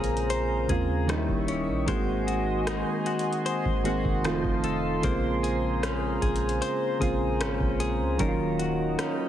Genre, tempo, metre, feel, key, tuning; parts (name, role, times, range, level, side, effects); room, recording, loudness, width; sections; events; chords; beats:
contemporary R&B; 76 BPM; 4/4; straight; Bb minor; A4 = 440 Hz
soft electric-piano-like synth keys; accompaniment; 0.0-9.3 s; Db3 to Gb4; -29 LUFS; right 2 dB; chorus
chorused pulse-width pad; sustained chords; 0.0-9.3 s; Gb3 to Db6; -33 LUFS; right 1 dB
direct-recorded clean electric guitar; arpeggios; 0.0-9.3 s; Eb3 to C5; -31 LUFS; left 4 dB; tape echo
soft 808-style bass; bass; 0.0-9.0 s; Db1 to Eb2; -32 LUFS; equal
booming analog drum machine; drums; 0.0-9.2 s; hi-hat, kick drum, rim click; -31 LUFS; equal; vintage 12-bit sampler grit
light reverb; heavily compressed radio sound; -24 LUFS; side -11 dB against mid
0.0-9.3 A section
0.0 Bbm9; 1.1 Eb7b9; 1.9 Ab7; 4.2 F7; 5.0 Bbm9; 8.2 Ebm7
0.30 1.09 | 1.88 2.67 3.46 4.25 | 5.04 5.83 6.62 7.41 | 8.20 8.98